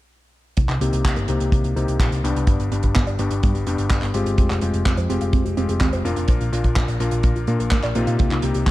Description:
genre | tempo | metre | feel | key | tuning
italo disco | 126 BPM | 4/4 | straight | C minor | A4 = 440 Hz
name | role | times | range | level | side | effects
warbly dusty pluck | arpeggios | 0.6-8.7 s | Bb3 to G5 | -30 LUFS | right 4 dB | chorus, tape echo
hollow-body short-scale picked electric bass | bass | 0.6-8.7 s | F1 to Bb2 | -23 LUFS | equal | none
damped 70s drum kit | drums | 0.6-8.7 s | handclaps, hi-hat | -29 LUFS | right 1 dB | small room reverb
kick drum | drums | 0.6-8.7 s | none | -19 LUFS | equal | small room reverb
clear electric grand piano | stabs | 0.8-8.7 s | G2 to Bb4 | -24 LUFS | left 3 dB | low-pass filter, tape echo
room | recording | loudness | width
little or no reverb | dark, warm production, faint mains hum | -18 LUFS | side -16 dB against mid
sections
0.6-8.7 A section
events
filter sweep on synth arpeggio sound 0.6-8.7; filter sweep on electric grand piano 0.6-8.7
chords
0.6 Cm7; 2.5 G; 4.4 Fmadd9; 6.3 Bb; 8.2 Cm7

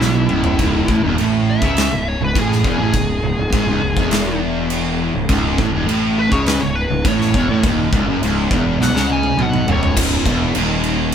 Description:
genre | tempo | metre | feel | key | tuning
stoner and doom metal | 102 BPM | 4/4 | straight | C# minor | A4 = 440 Hz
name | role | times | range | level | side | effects
fuzz lead guitar | melody | 0.0-10.0 s | E4 to G#5 | -22 LUFS | left 1 dB | wah, distortion
fuzz guitar | riff | 0.0-11.1 s | C#2 to C#3 | -18 LUFS | right 1 dB | distortion
fuzz fingered electric bass | bass | 0.0-11.1 s | C#1 to C#2 | -22 LUFS | equal | overdrive
big rock drum kit | drums | 0.0-11.1 s | crash cymbal, kick drum, snare drum, toms | -20 LUFS | equal | none
room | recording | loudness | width
light reverb | band playing live in one room | -14 LUFS | side -8 dB against mid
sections
0.0-10.0 A section; 10.0-11.1 B section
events
lead electric guitar solo 0.0-10.0; drum fill 0.0-0.6, 8.8-10.0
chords
0.0 C#m

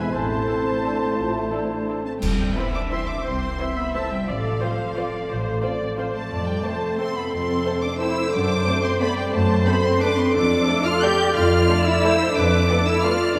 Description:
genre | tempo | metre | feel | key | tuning
classical, orchestral ballroom waltz | 177 BPM | 3/4 | uneven beats, rubato | C major | A4 = 440 Hz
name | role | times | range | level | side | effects
muted symphonic violin section | melody | 0.0-13.4 s | F5 to G6 | -30 LUFS | equal | none
bright clarinet | second line | 0.0-2.0 s | E4 | -35 LUFS | equal | none
flute section | second line | 0.0-2.0 s | G#5 to A5 | -36 LUFS | equal | none
mellow cor anglais | second line | 0.0-2.1 s | B4 to C5 | -34 LUFS | equal | none
muted studio violin section | second line | 0.0-13.1 s | E4 to E5 | -35 LUFS | equal | none
mellow French horn section | sustained chords | 0.0-13.2 s | E3 to F4 | -34 LUFS | equal | none
concert harp | arpeggios | 0.0-13.4 s | F2 to B5 | -29 LUFS | equal | none
muted symphonic cello section | bass | 0.0-13.4 s | F3 to G4 | -28 LUFS | equal | none
muted symphonic double bass section | bass | 0.0-13.4 s | A1 to F#2 | -28 LUFS | equal | none
muted studio viola section | accompaniment | 0.5-13.4 s | C4 to E5 | -31 LUFS | equal | none
clash cymbals and concert bass drum | percussion | 2.2-2.9 s | none | -32 LUFS | equal | none
room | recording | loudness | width
wet concert hall reverb, RT60 2.3 s | none | -22 LUFS | mono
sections
0.0-2.2 A section; 2.2-13.4 B section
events
band accent 2.2-2.6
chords
0.1 Am; 2.2 C; 4.3 F/A; 6.3 F; 8.3 D7/F#; 10.4 Dm/F; 12.4 Bm7b5/F

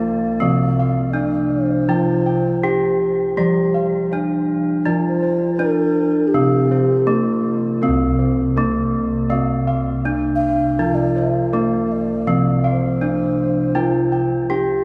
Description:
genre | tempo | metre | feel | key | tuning
gamelan | 81 BPM | 4/4 | straight | C slendro | A4 = 438 Hz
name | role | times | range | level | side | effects
gamelan-type bronze metallophone | melody | 0.0-14.8 s | Bb3-40c to G4+20c | -22 LUFS | equal | none
breathy mellow low xiao | second line | 0.0-14.6 s | F4-25c to F5 | -27 LUFS | equal | none
gamelan-type bronze metallophone | accompaniment | 0.0-14.8 s | C3 to G3+20c | -26 LUFS | equal | none
gamelan-type bossed gongs | arpeggios | 0.0-14.8 s | Bb4-40c to G5+20c | -31 LUFS | equal | none
gamelan-type bossed gongs | bass | 0.0-14.8 s | C2 to F4-20c | -26 LUFS | equal | none
room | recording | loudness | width
wet cathedral reverb, RT60 6.1 s | recorded in a church or concert hall, small room ambience | -18 LUFS | mono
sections
0.0-14.8 A section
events
none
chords
none

